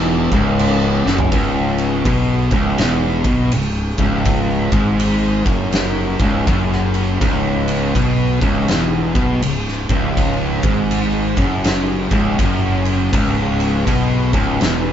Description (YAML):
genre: stoner and doom metal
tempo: 81 BPM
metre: 4/4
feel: swing 63% on 8ths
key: C# minor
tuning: A4 = 440 Hz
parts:
  - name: fuzz guitar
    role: riff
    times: 0.0-14.9 s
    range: C#2 to B2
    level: -17 LUFS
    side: equal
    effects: distortion
  - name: fuzz fingered electric bass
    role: bass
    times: 0.0-14.9 s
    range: C#1 to B1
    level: -22 LUFS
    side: equal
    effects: overdrive
  - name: oversized low-tuned drum kit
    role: drums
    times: 0.3-14.8 s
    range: crash cymbal, kick drum, ride cymbal, snare drum, toms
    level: -20 LUFS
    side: equal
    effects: none
room: little or no reverb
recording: band playing live in one room, nothing above 7.6 kHz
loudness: -14 LUFS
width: side -9 dB against mid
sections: 0.0-1.3 A section; 1.3-14.9 B section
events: drum fill 1.0-1.3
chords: 0.0 C#m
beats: 0.59 | 1.32 2.06 2.79 3.53 | 4.26 5.00 5.73 6.47 | 7.21 7.95 8.69 9.42 | 10.16 10.90 11.64 12.38 | 13.12 13.87 14.61